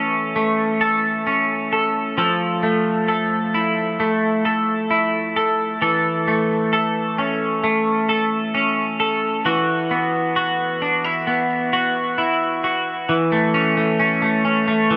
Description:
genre	dream pop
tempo	66 BPM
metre	4/4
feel	straight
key	A major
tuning	A4 = 440 Hz
part	clean electric guitar	solo	0.0-15.0 s	E3 to A4	-20 LUFS	equal	analog chorus, delay
room	moderate huge ambient reverb, RT60 8.7 s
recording	none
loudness	-20 LUFS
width	mono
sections	0.0-13.1 A section; 13.1-15.0 B section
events	none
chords	0.0 A; 2.2 Fmaj7; 5.8 A; 9.5 Esus2; 13.1 A

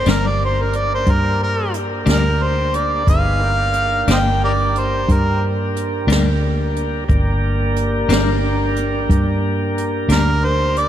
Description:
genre	slow blues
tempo	60 BPM (dotted quarters)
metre	12/8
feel	straight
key	G minor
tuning	A4 = 440 Hz
part	warm harmonica	melody	0.0-10.9 s	G4 to G5	-20 LUFS	right 1 dB	overdrive
part	tonewheel organ	sustained chords	0.0-10.9 s	Bb3 to B4	-23 LUFS	right 1 dB	slow rotary speaker
part	vintage muted fingered electric bass	bass	0.0-10.9 s	G1 to G2	-19 LUFS	equal	none
part	clean electric guitar	accompaniment	0.1-10.3 s	G2 to D4	-26 LUFS	left 5 dB	none
part	jazz brush drum kit	drums	0.1-10.9 s	hi-hat, kick drum, snare drum	-22 LUFS	equal	none
room	moderate huge ambient reverb, RT60 4.8 s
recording	dreamy mix soaked in reverb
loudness	-15 LUFS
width	side -11 dB against mid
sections	0.0-10.9 A section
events	harmonica solo 0.0-10.9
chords	0.0 Gm

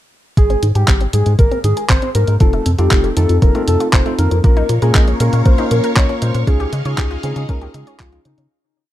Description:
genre	italo disco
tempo	118 BPM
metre	4/4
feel	straight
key	Ab major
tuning	A4 = 440 Hz
part	soft octave-layered synth lead	melody	0.4-8.5 s	Eb4 to Db5	-21 LUFS	left 2 dB	chorus, ping-pong delay
part	analog pluck	arpeggios	0.4-8.5 s	C3 to Db5	-26 LUFS	left 2 dB	chorus, ping-pong delay
part	round analog bass	bass	0.4-8.5 s	F1 to Db3	-16 LUFS	equal	tube saturation
part	clean 12-bit digital drum machine	drums	0.4-8.5 s	handclaps, hi-hat	-21 LUFS	equal	overdrive, studio reverb
part	electronic kick drum	drums	0.4-8.1 s	none	-13 LUFS	equal	overdrive, studio reverb
part	bell-like tine electric piano	stabs	2.4-8.5 s	Bb3 to Bb4	-22 LUFS	equal	auto-pan
part	phased string machine	sustained chords	4.4-8.5 s	Ab4 to Db6	-28 LUFS	right 2 dB	ensemble chorus, phaser
room	little or no reverb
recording	dark, warm production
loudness	-12 LUFS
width	side -13 dB against mid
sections	0.4-8.5 verse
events	fade-out 5.8-8.5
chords	0.4 Ab; 2.4 F7; 4.4 Bbm; 6.5 Dbadd9

